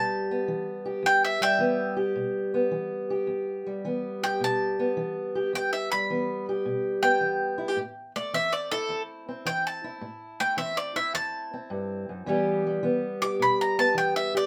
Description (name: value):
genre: acoustic country blues, solo or duo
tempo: 107 BPM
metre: 4/4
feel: swing 68% on 8ths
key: E minor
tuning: A4 = 439 Hz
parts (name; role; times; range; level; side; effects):
- bowl-back mandolin; melody; 0.0-14.5 s; A4 to D6; -28 LUFS; equal; none
- fingerpicked steel-string acoustic guitar; accompaniment; 0.0-14.5 s; E2 to G4; -30 LUFS; equal; none
room: moderate studio reverb, RT60 0.6 s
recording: band playing live in one room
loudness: -27 LUFS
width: mono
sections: 0.0-14.5 A section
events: mandolin solo 0.0-14.5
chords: 0.0 Em; 7.8 Am; 12.3 Em